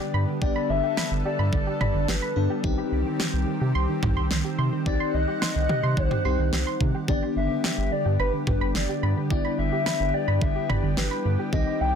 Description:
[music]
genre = synth-pop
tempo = 108 BPM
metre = 4/4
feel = straight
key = G major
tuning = A4 = 440 Hz
[part]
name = hollow clarinet-like synth lead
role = melody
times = 0.0-12.0 s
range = B4 to G5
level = -29 LUFS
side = left 3 dB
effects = chorus, phaser, ping-pong delay
[part]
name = FM electric piano with soft pad layer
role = accompaniment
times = 0.0-12.0 s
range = B3 to A4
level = -32 LUFS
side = left 6 dB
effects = chorus, tremolo
[part]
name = lush unison pad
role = sustained chords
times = 0.0-12.0 s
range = D3 to F#5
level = -31 LUFS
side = right 1 dB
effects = chorus
[part]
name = soft round pluck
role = arpeggios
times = 0.0-11.7 s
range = D3 to C6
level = -32 LUFS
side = right 6 dB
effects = chorus, ping-pong delay
[part]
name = round analog bass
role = bass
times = 0.1-11.9 s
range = G1 to C3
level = -26 LUFS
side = equal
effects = none
[part]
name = pop drum kit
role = drums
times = 0.4-11.7 s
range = kick drum, snare drum, toms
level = -27 LUFS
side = equal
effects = none
[sound]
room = moderate studio reverb, RT60 0.5 s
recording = dense, heavily limited modern master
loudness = -22 LUFS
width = side -7 dB against mid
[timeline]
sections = 0.0-12.0 A section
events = none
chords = 0.0 G; 2.6 Cm; 7.1 G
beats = | 0.42 0.97 1.53 2.08 | 2.64 3.19 3.75 4.30 | 4.86 5.42 5.97 6.53 | 7.08 7.64 8.19 8.75 | 9.30 9.86 10.42 10.97 | 11.53

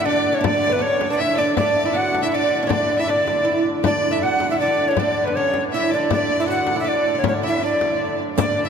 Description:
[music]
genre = medieval dance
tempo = 159 BPM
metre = 3/4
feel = straight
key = D major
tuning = A4 = 440 Hz
[part]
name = tenor recorder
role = melody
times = 0.0-8.6 s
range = B4 to F#5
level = -20 LUFS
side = equal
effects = none
[part]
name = oud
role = second line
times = 0.0-8.7 s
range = B3 to F#4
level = -24 LUFS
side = right 3 dB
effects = none
[part]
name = warm hurdy-gurdy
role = drone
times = 0.0-8.7 s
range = D3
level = -28 LUFS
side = right 1 dB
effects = none
[part]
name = rich fiddle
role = second line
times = 0.1-8.7 s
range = B4 to F#5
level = -26 LUFS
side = left 2 dB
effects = none
[part]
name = frame drum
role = percussion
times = 0.1-8.7 s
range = none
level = -27 LUFS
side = left 5 dB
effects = none
[part]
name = riq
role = percussion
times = 8.4-8.5 s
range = none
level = -35 LUFS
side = right 5 dB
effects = none
[sound]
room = wet cathedral reverb, RT60 5.7 s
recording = none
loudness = -17 LUFS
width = side -7 dB against mid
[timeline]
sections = 0.0-8.4 A section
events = none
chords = none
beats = 0.05 | 0.43 0.81 1.19 | 1.57 1.95 2.33 | 2.71 3.09 3.46 | 3.84 4.22 4.60 | 4.98 5.35 5.73 | 6.11 6.49 6.86 | 7.24 7.62 7.99 | 8.37

